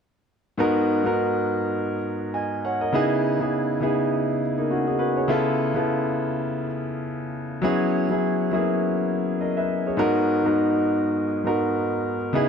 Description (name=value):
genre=soul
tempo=102 BPM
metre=4/4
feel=swing 58% on 16ths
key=G# minor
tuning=A4 = 435 Hz
part: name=warm grand piano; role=solo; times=0.6-12.5 s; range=G#2 to G#5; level=-21 LUFS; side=equal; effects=none
room=moderate echo chamber reverb, RT60 1.6 s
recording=none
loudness=-21 LUFS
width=side -6 dB against mid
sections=0.6-10.0 A section; 10.0-12.5 B section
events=none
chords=0.6 G#m9; 2.9 C#m9; 5.3 C#7alt; 7.6 F#7sus4; 10.0 G#m9